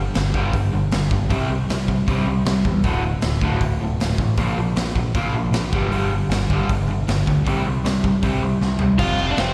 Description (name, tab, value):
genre	punk rock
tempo	156 BPM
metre	4/4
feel	straight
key	unclear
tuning	A4 = 440 Hz
part	raw garage guitar	riff	0.0-9.5 s	D2 to C4	-26 LUFS	equal	overdrive, slapback echo
part	sludgy distorted guitar	riff	0.0-9.5 s	D2 to C4	-30 LUFS	equal	none
part	growling picked electric bass	bass	0.0-9.5 s	D1 to E2	-25 LUFS	equal	overdrive
part	raw garage drum kit	drums	0.1-9.5 s	crash cymbal, hi-hat, kick drum, snare drum, toms	-26 LUFS	equal	none
part	high-gain lead guitar	melody	9.0-9.5 s	C4 to F5	-25 LUFS	equal	distortion, slapback echo
room	small room reverb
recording	live gig heard through the venue's PA, recital hall reverb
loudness	-20 LUFS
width	mono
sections	0.0-9.0 A section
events	drum fill 8.6-9.0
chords	0.0 G5; 1.3 C5; 2.8 D5; 4.4 Bb5; 5.7 G5; 7.5 C5; 9.0 F5